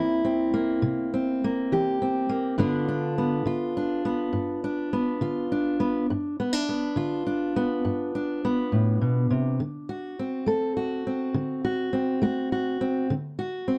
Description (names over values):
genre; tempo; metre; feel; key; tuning
blues; 68 BPM (dotted quarters); 12/8; straight; G mixolydian; A4 = 440 Hz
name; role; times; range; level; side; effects
fingerpicked steel-string acoustic guitar; solo; 0.0-13.8 s; G2 to A4; -26 LUFS; equal; none
room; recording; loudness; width
light reverb; dark, warm production; -27 LUFS; mono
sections
0.0-13.8 A section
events
none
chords
0.0 C7; 2.6 G7; 9.6 D7